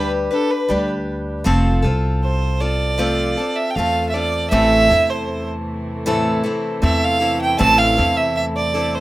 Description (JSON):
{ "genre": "acoustic folk duo or small band", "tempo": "78 BPM", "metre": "4/4", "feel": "straight", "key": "A minor", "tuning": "A4 = 440 Hz", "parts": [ { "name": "rich fiddle", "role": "second line", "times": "0.0-9.0 s", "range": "A4 to A5", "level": "-18 LUFS", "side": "right 3 dB", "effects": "none" }, { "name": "picked steel-string acoustic guitar", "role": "accompaniment", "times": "0.0-9.0 s", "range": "A2 to B4", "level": "-20 LUFS", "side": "left 1 dB", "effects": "none" }, { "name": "upright bass", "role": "bass", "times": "0.0-9.0 s", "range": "F1 to E2", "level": "-22 LUFS", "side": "equal", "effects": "none" }, { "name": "warm chamber string section", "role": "sustained chords", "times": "4.5-9.0 s", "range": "C3 to A3", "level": "-28 LUFS", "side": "equal", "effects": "none" } ], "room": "moderate small room ambience, RT60 0.5 s", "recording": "rough home demo mix", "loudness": "-16 LUFS", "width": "side -16 dB against mid", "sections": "0.0-9.0 A section", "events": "fiddle solo 0.0-9.0", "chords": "0.0 G; 1.5 F; 4.5 Am" }